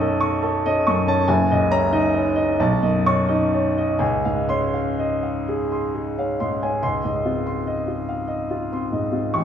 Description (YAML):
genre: classical, impressionist solo piano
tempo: 41-49 BPM (dotted quarters)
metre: 6/8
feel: rubato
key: Db major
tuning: A4 = 439 Hz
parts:
  - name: warm concert grand piano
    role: solo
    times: 0.0-9.4 s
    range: Gb1 to Db6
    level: -19 LUFS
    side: equal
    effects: none
room: moderate concert hall reverb, RT60 2.1 s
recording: small room ambience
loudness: -19 LUFS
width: side -8 dB against mid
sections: 0.0-6.8 A section; 6.8-9.4 A section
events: none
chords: 0.0 Cb9; 1.3 Gb69; 2.6 Cb9; 4.0 Dbmaj9